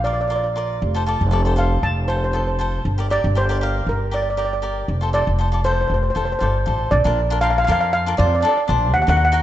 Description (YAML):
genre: calypso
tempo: 118 BPM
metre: 4/4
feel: swing 54% on 16ths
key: Bb major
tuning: A4 = 439 Hz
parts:
  - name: steel pan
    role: melody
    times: 0.0-9.4 s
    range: Bb4 to A5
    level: -21 LUFS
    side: right 1 dB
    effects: none
  - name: cavaquinho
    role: accompaniment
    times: 0.0-9.4 s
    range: D4 to F5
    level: -25 LUFS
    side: left 3 dB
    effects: none
  - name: upright bass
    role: bass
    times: 0.0-9.4 s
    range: F1 to F2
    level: -20 LUFS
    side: equal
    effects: none
room: moderate lush hall reverb, RT60 2.7 s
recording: rough home demo mix, nothing above 8.0 kHz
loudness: -17 LUFS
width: side -12 dB against mid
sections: 0.0-6.9 A section; 6.9-9.4 B section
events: none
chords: 0.0 Bb; 0.8 F; 2.9 Gm; 4.9 F; 6.9 Bb